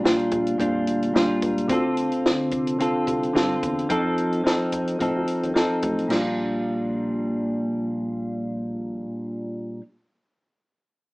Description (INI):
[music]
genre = indie pop, bedroom pop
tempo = 109 BPM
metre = 4/4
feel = swing 55% on 16ths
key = Bb major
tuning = A4 = 440 Hz
[part]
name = clean electric guitar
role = accompaniment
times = 0.0-9.8 s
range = Bb2 to A4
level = -22 LUFS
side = equal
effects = lush chorus, vibrato effect
[part]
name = chorused synth bass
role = bass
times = 0.0-9.1 s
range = A1 to A2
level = -34 LUFS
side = equal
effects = none
[part]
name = compact cocktail drum kit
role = drums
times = 0.1-6.2 s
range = crash cymbal, hi-hat, kick drum, snare drum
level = -25 LUFS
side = equal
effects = none
[sound]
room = wet studio reverb, RT60 0.5 s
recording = rough home demo mix, small speaker sound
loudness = -22 LUFS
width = side -24 dB against mid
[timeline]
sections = 0.0-6.1 A section; 6.1-8.3 B section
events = none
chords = 0.0 Bb6; 1.7 Dm7; 3.9 F7; 6.1 Bb6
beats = 0.04 0.59 1.15 | 1.70 2.25 2.80 3.35 | 3.90 4.45 5.00 5.55 | 6.10 6.65 7.20 7.75